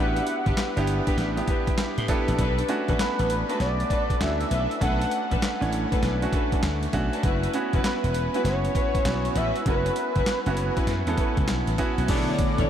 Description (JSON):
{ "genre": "R&B, new jack swing", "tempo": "99 BPM", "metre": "4/4", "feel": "swing 65% on 16ths", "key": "B minor", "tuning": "A4 = 441 Hz", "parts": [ { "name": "wide unison lead", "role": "melody", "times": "0.0-12.7 s", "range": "B4 to F#5", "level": "-30 LUFS", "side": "equal", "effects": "analog delay" }, { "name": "clear grand piano", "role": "accompaniment", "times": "0.0-12.7 s", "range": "A3 to A4", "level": "-28 LUFS", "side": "right 3 dB", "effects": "none" }, { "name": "dark studio string section", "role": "stabs", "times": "0.0-12.7 s", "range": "D4 to C#5", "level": "-32 LUFS", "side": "left 2 dB", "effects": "analog delay" }, { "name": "slap bass", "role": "bass", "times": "0.0-12.7 s", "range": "E1 to A2", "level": "-27 LUFS", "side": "equal", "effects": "none" }, { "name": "boom bap sampler-style drum kit", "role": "drums", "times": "0.2-12.7 s", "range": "crash cymbal, handclaps, hi-hat, kick drum, snare drum, tambourine", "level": "-28 LUFS", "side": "equal", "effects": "none" }, { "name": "sweeping resonant pad", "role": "sustained chords", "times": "12.1-12.7 s", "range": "D3 to B3", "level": "-28 LUFS", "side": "equal", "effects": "chorus" } ], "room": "moderate huge ambient reverb, RT60 5.0 s", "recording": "dreamy mix soaked in reverb", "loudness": "-22 LUFS", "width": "side -9 dB against mid", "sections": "0.0-12.1 A section", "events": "none", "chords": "0.0 A9sus4; 2.4 Bm7; 7.2 F#7sus4; 12.1 Bm11" }